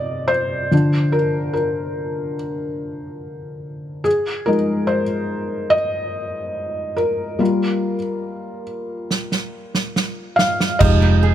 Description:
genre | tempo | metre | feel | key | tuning
pop ballad | 72 BPM | 4/4 | straight | unclear | A4 = 440 Hz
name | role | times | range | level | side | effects
felt-muted upright piano | accompaniment | 0.0-11.3 s | C3 to F5 | -19 LUFS | left 1 dB | none
natural country drum kit | drums | 9.1-11.0 s | crash cymbal, kick drum, snare drum, toms | -19 LUFS | right 2 dB | none
granular cloud pad | sustained chords | 10.8-11.3 s | none | barely audible | none | none
flamenco guitar | arpeggios | 10.8-11.3 s | F3 to Ab4 | -22 LUFS | right 9 dB | none
vintage muted fingered electric bass | bass | 10.8-11.3 s | F1 | -14 LUFS | right 1 dB | none
room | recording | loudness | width
small room ambience | none | -18 LUFS | side -11 dB against mid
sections
0.0-10.8 A section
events
felt piano solo 0.0-10.8; drum fill 9.1-10.8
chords
0.0 Cm; 0.7 Bb/D; 4.1 Fm7; 7.4 Gm7; 10.8 Fm7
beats
| 0.72 1.56 2.39 3.22 | 4.05 4.89 5.73 6.57 | 7.41 8.25 9.10 9.96 | 10.81

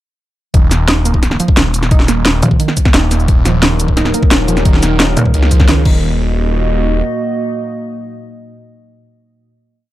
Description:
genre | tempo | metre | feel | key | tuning
dark technical drum and bass | 175 BPM | 4/4 | straight | Eb minor | A4 = 440 Hz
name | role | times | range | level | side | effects
warbly dusty pluck | arpeggios | 0.5-6.2 s | Eb3 to Eb4 | -20 LUFS | right 4 dB | chorus, sidechain pumping, dub echo
phased detuned saw bass | bass | 0.5-7.0 s | Eb1 to Db2 | -14 LUFS | equal | phaser, overdrive, sidechain pumping
drum and bass drum kit | drums | 0.5-5.9 s | crash cymbal, hi-hat, shaker, snare drum | -15 LUFS | equal | overdrive
electronic kick drum | drums | 0.5-5.9 s | none | -11 LUFS | equal | overdrive
pulsing pluck wobble bass | bass | 2.4-2.6, 5.2-5.3 s | Eb1 | -12 LUFS | equal | chorus
dark analog pad | sustained chords | 3.3-9.5 s | Gb3 to Eb5 | -20 LUFS | equal | wide subtle chorus, sidechain pumping
room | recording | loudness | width
light reverb | dark, warm production | -10 LUFS | side -15 dB against mid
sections
0.5-6.0 drop; 6.0-8.8 final hit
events
drop 0.5-6.0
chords
0.5 Ebm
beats
| 0.54 0.88 1.23 1.57 | 1.91 2.25 2.60 2.94 | 3.28 3.63 3.97 4.31 | 4.65 5.00 5.34 5.68 | 6.03 6.37 6.71 7.05 | 7.40 7.74 8.08 8.43

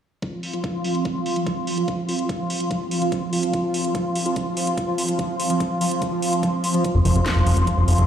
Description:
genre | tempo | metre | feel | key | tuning
psychedelic trance | 145 BPM | 4/4 | straight | unclear | A4 = 439 Hz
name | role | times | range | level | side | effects
pulsing gated texture | sustained chords | 0.2-8.1 s | F3 to F4 | -25 LUFS | equal | chorus, built-in reverb, sidechain pumping
electronic kick drum | drums | 0.2-7.8 s | none | -28 LUFS | right 1 dB | high-pass filter on kick
garage drum kit | drums | 0.2-8.1 s | hi-hat, snare drum | -30 LUFS | equal | low-pass filter on hats, low-pass filter on snare
airy breathy pad | texture | 0.2-8.1 s | C4 to C6 | -26 LUFS | right 1 dB | chorus, sidechain pumping
plucky analog bass | bass | 6.9-8.0 s | F1 | -16 LUFS | equal | none
room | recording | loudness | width
moderate lush hall reverb, RT60 2.1 s | played on a big sound system in a bare room, stone room reverb | -20 LUFS | side -9 dB against mid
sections
0.2-8.1 A section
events
filter sweep on synth texture 0.2-8.1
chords
0.2 F5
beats
| 0.22 0.64 1.05 1.47 | 1.88 2.29 2.71 3.12 | 3.53 3.95 4.36 4.78 | 5.19 5.60 6.02 6.43 | 6.84 7.26 7.67

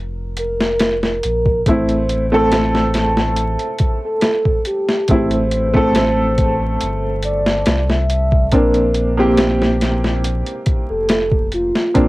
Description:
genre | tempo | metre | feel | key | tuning
trip hop | 70 BPM | 4/4 | straight | A phrygian | A4 = 440 Hz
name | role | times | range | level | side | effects
warm sub bass | bass | 0.0-12.1 s | F1 to C2 | -21 LUFS | equal | tube saturation
pure breathy sine lead | melody | 0.4-12.1 s | F4 to E5 | -21 LUFS | equal | chorus, cassette tape, dub echo
boom bap sampler-style drum kit | drums | 0.4-12.1 s | hi-hat, kick drum, snare drum | -18 LUFS | equal | overdrive, cassette tape
clear upright piano | accompaniment | 1.7-12.1 s | A3 to A4 | -18 LUFS | equal | tremolo, vintage 12-bit sampler grit, cassette tape, tape echo
room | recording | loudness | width
light reverb | home recording on cassette, vinyl crackle | -14 LUFS | side -19 dB against mid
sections
0.0-12.1 A section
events
none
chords
0.0 Bb5; 1.7 Am; 8.5 Bbadd9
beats
0.81 | 1.67 2.53 3.38 4.24 | 5.10 5.96 6.81 7.67 | 8.53 9.38 10.24 11.10 | 11.96

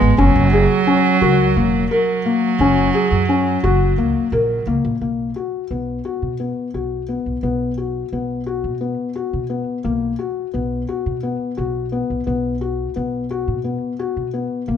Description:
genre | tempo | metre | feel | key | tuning
contemporary instrumental, chamber music in an uneven meter | 174 BPM (eighths) | 7/8 | straight | unclear | A4 = 440 Hz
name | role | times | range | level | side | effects
warm cello | second line | 0.0-4.6 s | F#3 to G#3 | -19 LUFS | right 9 dB | none
felt-muted upright piano | arpeggios | 0.0-14.8 s | A#3 to A#4 | -20 LUFS | left 5 dB | none
upright bass | bass | 0.0-14.8 s | E1 to B2 | -22 LUFS | right 1 dB | none
celesta | texture | 1.2-2.2 s | A#4 | -29 LUFS | left 10 dB | none
room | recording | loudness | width
moderate recital hall reverb, RT60 1.5 s | none | -17 LUFS | side -8 dB against mid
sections
0.0-5.0 A section; 5.0-14.8 B section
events
none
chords
0.2 F#; 5.0 B5; 7.4 F#sus4/B; 9.9 B5; 12.3 F#sus4/B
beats
| 0.19 0.53 0.88 1.22 1.57 1.91 2.26 | 2.60 2.95 3.29 3.64 3.98 4.33 4.67 | 5.02 5.36 5.71 6.05 6.40 6.74 7.09 | 7.43 7.78 8.12 8.47 8.82 9.16 9.51 | 9.85 10.20 10.54 10.89 11.23 11.58 11.93 | 12.27 12.62 12.96 13.31 13.65 14.00 14.34 | 14.69

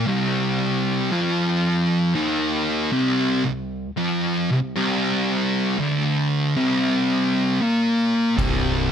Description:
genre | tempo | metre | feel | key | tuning
stoner and doom metal | 58 BPM | 4/4 | straight | C minor | A4 = 436 Hz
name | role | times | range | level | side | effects
thick fuzz guitar | riff | 0.0-8.9 s | C2 to Bb3 | -19 LUFS | equal | distortion
fuzz fingered electric bass | bass | 8.4-8.9 s | C1 | -24 LUFS | equal | overdrive
oversized low-tuned drum kit | drums | 8.4-8.6 s | kick drum, ride cymbal | -26 LUFS | equal | none
room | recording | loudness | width
studio reverb | none | -19 LUFS | side -8 dB against mid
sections
0.0-8.9 A section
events
none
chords
0.0 Cm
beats
| 0.07 1.11 2.15 3.19 | 4.23 5.27 6.31 7.34 | 8.38

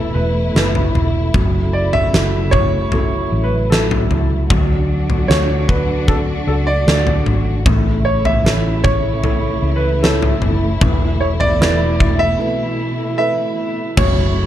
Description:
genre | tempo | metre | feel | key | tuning
pop ballad | 76 BPM | 4/4 | straight | unclear | A4 = 440 Hz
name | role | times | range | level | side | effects
clear concert grand piano | melody | 0.0-14.5 s | A4 to E5 | -20 LUFS | right 1 dB | none
felt-muted upright piano | accompaniment | 0.0-14.5 s | E3 to C#5 | -24 LUFS | right 3 dB | none
dark studio string section | sustained chords | 0.0-14.5 s | B2 to F#4 | -23 LUFS | left 1 dB | none
vintage muted fingered electric bass | bass | 0.0-14.5 s | E1 to D2 | -19 LUFS | equal | none
huge arena drum kit | drums | 0.6-14.2 s | crash cymbal, kick drum, snare drum, toms | -18 LUFS | left 1 dB | none
room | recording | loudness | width
small room ambience | dark, warm production | -14 LUFS | side -12 dB against mid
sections
0.0-14.0 A section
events
break 12.4-14.0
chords
0.0 Esus4; 1.3 F#m7; 4.5 D; 7.7 A; 10.8 Esus4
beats
0.55 | 1.34 2.13 2.92 3.71 | 4.50 5.29 6.08 6.87 | 7.66 8.45 9.24 10.03 | 10.82 11.61 12.40 13.19 | 13.97

